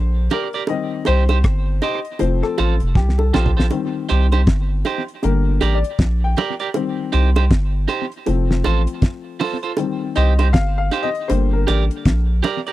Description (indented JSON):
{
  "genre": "roots reggae",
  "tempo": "79 BPM",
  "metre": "4/4",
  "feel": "swing 61% on 16ths",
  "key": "C dorian",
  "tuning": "A4 = 440 Hz",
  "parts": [
    { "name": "warm upright piano", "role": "stabs", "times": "0.0-12.6 s", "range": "D3 to G5", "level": "-24 LUFS", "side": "left 7 dB", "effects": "none" },
    { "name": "soft dub sub bass", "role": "bass", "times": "0.0-12.4 s", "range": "F1 to C2", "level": "-17 LUFS", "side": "equal", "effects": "none" },
    { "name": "electric guitar at the edge of break-up", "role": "accompaniment", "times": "0.3-12.7 s", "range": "Eb4 to D5", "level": "-24 LUFS", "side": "right 6 dB", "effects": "tube saturation, tape echo" },
    { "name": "damped 70s drum kit", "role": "drums", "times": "0.3-12.7 s", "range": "hi-hat, kick drum, rim click, snare drum, toms", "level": "-18 LUFS", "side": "equal", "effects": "tape echo" },
    { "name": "bongos", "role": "percussion", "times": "0.3-12.7 s", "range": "none", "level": "-23 LUFS", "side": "right 5 dB", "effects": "none" }
  ],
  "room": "little or no reverb",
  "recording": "dry, close 1970s-style studio recording",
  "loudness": "-16 LUFS",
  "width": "side -15 dB against mid",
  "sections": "0.0-12.7 A section",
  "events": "upright piano solo 0.0-12.7; drum fill 3.0-3.7",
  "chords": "0.0 Gm; 0.7 Cm; 2.2 F; 3.7 Cm; 5.2 Gm; 6.7 Cm; 8.3 F; 9.8 Cm; 11.3 Gm"
}